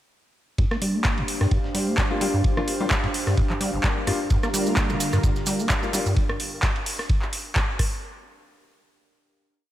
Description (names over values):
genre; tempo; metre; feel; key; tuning
acid house; 129 BPM; 4/4; swing 55% on 16ths; G minor; A4 = 440 Hz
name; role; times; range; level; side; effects
deep acid bass; riff; 0.6-6.1 s; G1 to Bb3; -26 LUFS; equal; overdrive, cassette tape, tape echo
dusty soul sampler-style drum kit; drums; 0.6-7.9 s; hi-hat, ride cymbal, snare drum; -38 LUFS; right 2 dB; sidechain pumping on cymbals, high-pass filter on cymbals, high-pass filter on snare, sidechain pumping on hats, high-pass filter on hats, high-pass filter on room
electronic kick drum; drums; 0.6-7.9 s; none; -24 LUFS; equal; none
airy breathy pad; texture; 0.6-6.2 s; D4 to F5; -31 LUFS; right 1 dB; chorus, sidechain pumping
booming analog drum machine; drums; 0.7-7.9 s; handclaps, hi-hat, rim click; -28 LUFS; equal; overdrive
bright baby grand piano; stabs; 2.1-6.0 s; G3 to G4; -30 LUFS; left 4 dB; tape echo
lush unison pad; sustained chords; 4.3-6.1 s; D3 to Bb4; -30 LUFS; equal; chorus, sidechain pumping
maracas; percussion; 4.3-6.1 s; none; -32 LUFS; right 5 dB; none
room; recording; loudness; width
moderate lush hall reverb, RT60 1.8 s; dreamy mix soaked in reverb; -21 LUFS; side -13 dB against mid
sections
0.6-8.0 groove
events
none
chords
0.6 Gm7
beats
| 0.58 1.05 1.51 1.98 | 2.44 2.91 3.37 3.84 | 4.30 4.77 5.24 5.70 | 6.17 6.63 7.09 7.56